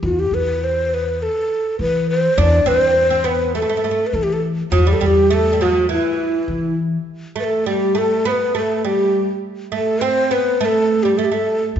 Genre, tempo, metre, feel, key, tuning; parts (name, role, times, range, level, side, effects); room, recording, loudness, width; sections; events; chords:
arabic; 102 BPM; 4/4; straight; E maqam bayati; A4 = 440 Hz
breathy mellow ney; melody; 0.0-11.6 s; E4 to D5; -17 LUFS; left 1 dB
upright bass; bass; 0.0-7.0, 11.8 s; E2 to E3; -20 LUFS; left 1 dB
oud; second line; 2.4-11.6 s; E3 to D4; -21 LUFS; right 7 dB
moderate scoring stage reverb, RT60 1.7 s; recorded in a church or concert hall, nothing above 7.8 kHz; -15 LUFS; side -9 dB against mid
0.0-7.1 A section; 7.1-11.8 B section